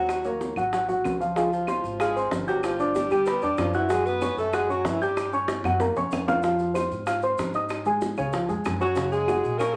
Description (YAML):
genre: Afro-Cuban jazz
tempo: 190 BPM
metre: 4/4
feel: straight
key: Db major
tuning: A4 = 439 Hz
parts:
  - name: warm alto saxophone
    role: melody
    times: 0.0-5.3, 8.8-9.8 s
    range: E4 to Cb5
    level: -31 LUFS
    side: equal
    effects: none
  - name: clear tenor saxophone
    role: second line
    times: 0.0-5.3, 8.8-9.8 s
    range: Fb3 to Cb4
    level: -34 LUFS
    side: equal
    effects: none
  - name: dark grand piano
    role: accompaniment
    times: 0.0-9.7 s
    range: Db3 to G6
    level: -28 LUFS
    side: equal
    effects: none
  - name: upright bass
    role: bass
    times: 0.0-9.8 s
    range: G1 to Bb2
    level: -38 LUFS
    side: equal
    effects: none
  - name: bongos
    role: percussion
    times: 0.1-9.8 s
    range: none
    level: -34 LUFS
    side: equal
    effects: none
  - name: claves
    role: percussion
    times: 0.1-9.8 s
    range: none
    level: -43 LUFS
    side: equal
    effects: none
  - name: maracas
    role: percussion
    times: 0.1-9.8 s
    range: none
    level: -51 LUFS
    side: equal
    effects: none
room: moderate large studio reverb, RT60 1.0 s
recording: vinyl crackle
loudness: -25 LUFS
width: mono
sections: 0.0-1.4 A section; 1.4-9.8 B section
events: drum fill 5.5-6.4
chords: 0.1 Ebm7; 0.7 Dbadd11/Ab; 1.4 Dbmaj7; 2.6 G6; 3.9 Gb5; 5.8 Gb; 6.4 Fm7; 7.7 Ab5; 8.3 Db; 9.0 Gbadd9